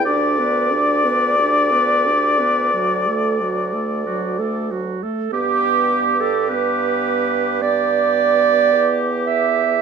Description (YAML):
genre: classical, slow romantic movement for wind quintet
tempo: 44-56 BPM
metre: 4/4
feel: rubato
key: G major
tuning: A4 = 440 Hz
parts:
  - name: clear oboe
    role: second line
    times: 0.0-9.8 s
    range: G4 to D5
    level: -20 LUFS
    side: left 3 dB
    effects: none
  - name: clear clarinet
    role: accompaniment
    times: 0.0-9.8 s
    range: F#4 to E5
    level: -20 LUFS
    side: right 11 dB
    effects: none
  - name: mellow French horn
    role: accompaniment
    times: 0.0-9.8 s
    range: F#3 to D4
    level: -25 LUFS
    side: equal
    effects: none
  - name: clear bassoon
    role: bass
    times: 0.0-9.8 s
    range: D2 to G2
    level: -25 LUFS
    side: right 4 dB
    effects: none
  - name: mellow concert flute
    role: melody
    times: 0.1-9.8 s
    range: D5 to D6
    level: -26 LUFS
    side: left 6 dB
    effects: none
room: moderate large studio reverb, RT60 0.8 s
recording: minimal, uncompressed stereo recording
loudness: -16 LUFS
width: side -6 dB against mid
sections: 0.0-5.3 A section; 5.3-9.8 B section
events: none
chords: 0.1 G/D; 2.7 D; 5.3 G